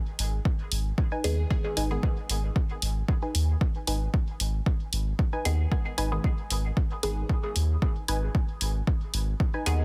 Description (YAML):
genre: dub techno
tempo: 114 BPM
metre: 4/4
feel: swing 53% on 16ths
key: G# minor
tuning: A4 = 440 Hz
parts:
  - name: soft dub sub bass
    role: bass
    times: 0.2-9.8 s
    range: G#1 to D#2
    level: -29 LUFS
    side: equal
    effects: tube saturation, sidechain pumping
  - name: electronic hi-hat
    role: drums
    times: 0.2-9.8 s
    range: none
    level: -34 LUFS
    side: equal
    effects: none
  - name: electronic kick drum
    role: drums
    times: 0.5-9.5 s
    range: none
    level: -28 LUFS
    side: equal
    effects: none
  - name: filtered dub chord stab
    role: riff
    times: 1.1-9.7 s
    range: D#4 to G#5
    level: -38 LUFS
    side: equal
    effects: chorus, sidechain pumping, dub echo
  - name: filtered dub chord stab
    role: stabs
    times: 1.2-2.1, 5.5-9.8 s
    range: D#3 to G#4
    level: -38 LUFS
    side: equal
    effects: phaser, sidechain pumping, dub echo
room: little or no reverb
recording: dense, heavily limited modern master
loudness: -28 LUFS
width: mono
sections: 0.0-9.8 A section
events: none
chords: 0.0 G#m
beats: 0.45 0.98 | 1.50 2.03 2.56 3.08 | 3.61 4.14 4.66 5.19 | 5.72 6.24 6.77 7.29 | 7.82 8.35 8.87 9.40